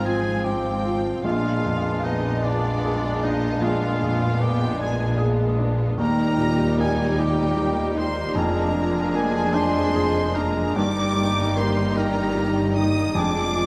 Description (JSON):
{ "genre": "classical, romantic movement for piano and orchestra", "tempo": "50 BPM (dotted quarters)", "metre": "12/8", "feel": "rubato", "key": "Eb major", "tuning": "A4 = 440 Hz", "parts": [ { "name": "warm grand piano", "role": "melody", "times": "0.0-13.7 s", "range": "Bb1 to Ab4", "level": "-28 LUFS", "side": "equal", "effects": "none" }, { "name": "warm symphonic violin section", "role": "melody", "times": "0.0-13.7 s", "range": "D5 to Eb6", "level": "-34 LUFS", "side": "equal", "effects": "none" }, { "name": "clear clarinet", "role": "second line", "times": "0.0-13.7 s", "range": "C4 to Eb4", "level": "-34 LUFS", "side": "equal", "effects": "none" }, { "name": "warm oboe", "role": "second line", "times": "0.0-13.7 s", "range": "D4 to Eb5", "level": "-34 LUFS", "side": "equal", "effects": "none" }, { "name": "warm symphonic violin section", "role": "second line", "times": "0.0-13.7 s", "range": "C4 to Ab4", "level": "-35 LUFS", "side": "equal", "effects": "none" }, { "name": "rich symphonic viola section", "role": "accompaniment", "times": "0.0-13.7 s", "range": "Eb3 to C4", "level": "-34 LUFS", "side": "equal", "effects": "none" }, { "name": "warm bassoon", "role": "accompaniment", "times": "0.0-13.7 s", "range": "F3 to Ab3", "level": "-33 LUFS", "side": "equal", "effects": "none" }, { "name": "clear French horn section", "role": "sustained chords", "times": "0.0-13.7 s", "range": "F3 to Eb4", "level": "-34 LUFS", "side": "equal", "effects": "none" }, { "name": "clear symphonic double bass section", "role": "bass", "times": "0.0-13.7 s", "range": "F1 to Eb2", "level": "-31 LUFS", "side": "equal", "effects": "none" }, { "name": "warm studio cello section", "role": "bass", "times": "0.0-13.7 s", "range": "Eb2 to Bb2", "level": "-31 LUFS", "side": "equal", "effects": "none" } ], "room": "moderate scoring stage reverb, RT60 1.5 s", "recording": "none", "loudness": "-22 LUFS", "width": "mono", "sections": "0.0-13.7 A section", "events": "none", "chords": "0.0 Fm/Ab; 1.2 Bb7b9; 6.0 Eb; 8.4 Bb7/F; 10.8 Eb/G; 13.2 Ddim/F" }